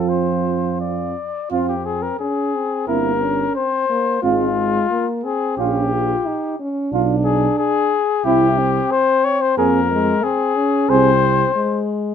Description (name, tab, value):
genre	classical, brass quintet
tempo	90 BPM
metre	4/4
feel	rubato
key	F minor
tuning	A4 = 444 Hz
part	dark trumpet	melody	0.0-11.9 s	F4 to D5	-19 LUFS	left 6 dB	none
part	dark flugelhorn	second line	0.0-11.1 s	E4 to Ab4	-22 LUFS	right 8 dB	none
part	dark euphonium	accompaniment	0.0-11.1 s	F3 to D4	-23 LUFS	right 6 dB	none
part	warm French horn	accompaniment	0.0-12.1 s	Ab3 to F4	-22 LUFS	left 1 dB	none
part	mellow tuba	bass	0.0-11.4 s	G1 to F2	-22 LUFS	right 3 dB	none
room	light reverb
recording	minimal, uncompressed stereo recording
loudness	-16 LUFS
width	side -8 dB against mid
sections	0.0-1.5 A section; 1.5-12.1 B section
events	none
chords	0.0 F5; 1.5 Fm; 2.9 C7(no3)/G; 4.2 Fm/Ab; 5.6 Gm7b5/Bb; 6.9 Bm6; 8.2 C; 9.6 Fm